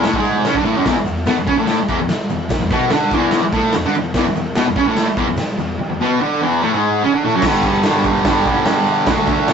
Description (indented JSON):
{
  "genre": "garage rock duo or trio",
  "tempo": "146 BPM",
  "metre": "4/4",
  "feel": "straight",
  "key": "unclear",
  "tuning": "A4 = 445 Hz",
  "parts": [
    { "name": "fuzz guitar", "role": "riff", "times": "0.0-9.5 s", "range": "E2 to D4", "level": "-15 LUFS", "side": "right 1 dB", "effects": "distortion" },
    { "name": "raw garage drum kit", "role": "drums", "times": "0.0-9.5 s", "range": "crash cymbal, hi-hat, kick drum, snare drum", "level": "-20 LUFS", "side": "equal", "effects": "none" },
    { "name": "egg shaker", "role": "percussion", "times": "0.0-9.5 s", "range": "none", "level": "-48 LUFS", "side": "left 8 dB", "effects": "none" }
  ],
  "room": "moderate studio reverb, RT60 0.5 s",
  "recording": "rough rehearsal-room recording, nothing above 7.9 kHz",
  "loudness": "-14 LUFS",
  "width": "side -7 dB against mid",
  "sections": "0.0-7.4 A section; 7.4-9.5 B section",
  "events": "none",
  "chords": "0.0 E; 7.4 G5",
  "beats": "0.04 0.45 | 0.86 1.27 1.68 2.09 | 2.50 2.91 3.32 3.73 | 4.15 4.56 4.97 5.38 | 5.79 6.20 6.61 7.02 | 7.43 7.84 8.25 8.66 | 9.07 9.48"
}